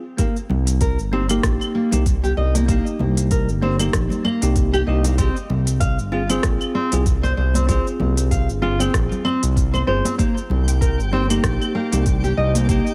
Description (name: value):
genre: organic downtempo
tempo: 96 BPM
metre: 4/4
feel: swing 56% on 16ths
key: C minor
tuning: A4 = 437 Hz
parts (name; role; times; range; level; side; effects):
- bell-like tine electric piano; accompaniment; 0.2-12.9 s; Bb3 to Ab4; -28 LUFS; equal; sidechain pumping, digital delay
- nylon-string guitar; arpeggios; 0.2-12.9 s; Bb3 to F5; -26 LUFS; equal; digital delay
- electronic kick drum; drums; 0.2-12.8 s; none; -24 LUFS; equal; none
- organic electronic drum kit; drums; 0.2-12.9 s; cabasa, claves, hi-hat, rim click; -29 LUFS; equal; none
- smooth synth bass; bass; 0.5-12.8 s; G1 to C2; -22 LUFS; equal; tube saturation
- congas; percussion; 0.5-12.7 s; none; -32 LUFS; equal; none
- twinkling granular texture; texture; 10.4-12.9 s; G4 to G5; -36 LUFS; equal; built-in reverb
room: light reverb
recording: none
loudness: -19 LUFS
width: mono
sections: 0.2-12.9 A section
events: stop 0.0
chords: 0.2 Cm7; 5.2 Fm; 10.2 Cm7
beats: | 0.19 0.81 1.44 2.06 | 2.69 3.31 3.94 4.56 | 5.19 5.81 6.44 7.06 | 7.69 8.31 8.94 9.56 | 10.19 10.81 11.44 12.06 | 12.69